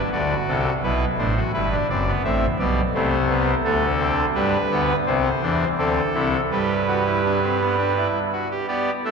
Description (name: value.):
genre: classical, baroque-style 3-part fugue for pipe organ.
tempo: 84 BPM.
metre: 3/4.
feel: straight.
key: G major from 4.3 s.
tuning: A4 = 440 Hz.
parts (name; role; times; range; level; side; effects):
pipe organ, trumpet; solo; 0.0-9.1 s; F#1 to E5; -19 LUFS; equal; none.
room: wet cathedral reverb, RT60 4.9 s.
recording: dark, warm production.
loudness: -19 LUFS.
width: side -5 dB against mid.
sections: 0.1-8.7 A section.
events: none.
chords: 0.1 Bm; 1.5 Em/G; 2.2 Am; 3.6 D5; 4.3 G; 5.1 C; 5.8 D5; 6.5 G.